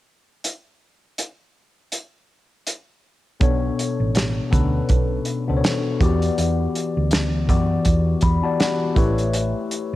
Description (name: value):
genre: lush 1970s-style soul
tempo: 81 BPM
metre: 4/4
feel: swing 58% on 16ths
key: B minor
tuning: A4 = 441 Hz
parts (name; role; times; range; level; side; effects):
- warm soul drum kit; drums; 0.4-9.9 s; hi-hat, kick drum, snare drum; -21 LUFS; right 1 dB; none
- tine electric piano; accompaniment; 3.4-10.0 s; B2 to B5; -22 LUFS; left 4 dB; phaser, cassette tape
- hollow-body short-scale fingered electric bass; bass; 3.4-10.0 s; A1 to F#2; -22 LUFS; right 1 dB; none
room: light reverb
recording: home recording on cassette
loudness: -19 LUFS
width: side -16 dB against mid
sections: 0.4-3.4 A section; 3.4-10.0 B section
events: tine electric piano fill 7.9-9.3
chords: 0.4 N.C.; 3.4 Bm9; 6.0 Em7; 9.0 A7